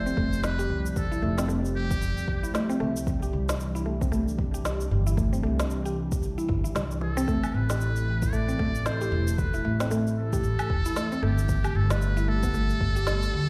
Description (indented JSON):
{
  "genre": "organic downtempo",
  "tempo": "114 BPM",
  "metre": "4/4",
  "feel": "swing 59% on 16ths",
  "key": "A minor",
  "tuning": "A4 = 440 Hz",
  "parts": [
    { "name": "trumpet with metal mute", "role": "melody", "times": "0.0-2.8, 7.0-13.5 s", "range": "G4 to D5", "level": "-36 LUFS", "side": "equal", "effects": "tape echo" },
    { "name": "airy breathy pad", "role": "sustained chords", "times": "0.0-13.5 s", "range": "C3 to A4", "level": "-37 LUFS", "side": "equal", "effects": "chorus, sidechain pumping" },
    { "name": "mallet-like synth pluck", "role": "arpeggios", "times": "0.0-13.5 s", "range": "E3 to G4", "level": "-33 LUFS", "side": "equal", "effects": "chorus, tape echo" },
    { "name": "upright bass", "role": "bass", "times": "0.0-13.5 s", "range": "E1 to D2", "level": "-30 LUFS", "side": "equal", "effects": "none" },
    { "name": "quartz singing bowl", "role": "texture", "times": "0.0-13.5 s", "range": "D5", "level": "-50 LUFS", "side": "equal", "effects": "none" },
    { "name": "electronic shaker, snare drum and woodblock", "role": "drums", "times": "0.1-13.3 s", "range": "none", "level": "-37 LUFS", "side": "equal", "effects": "overdrive" },
    { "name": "electronic kick drum", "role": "drums", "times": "0.2-12.9 s", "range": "none", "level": "-31 LUFS", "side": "equal", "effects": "overdrive" }
  ],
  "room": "light reverb, small room reverb",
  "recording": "played on a big sound system in a bare room, large studio reverb",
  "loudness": "-27 LUFS",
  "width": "mono",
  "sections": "0.0-13.5 A section",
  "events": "none",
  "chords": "0.0 Fadd9; 3.1 Cadd9; 7.3 Am; 11.5 Gadd9",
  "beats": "0.44 | 0.96 1.49 2.02 2.54 | 3.07 3.60 4.12 4.65 | 5.17 5.70 6.23 6.75 | 7.28 7.81 8.33 8.86 | 9.38 9.91 10.44 10.96 | 11.49 12.02 12.54 13.07"
}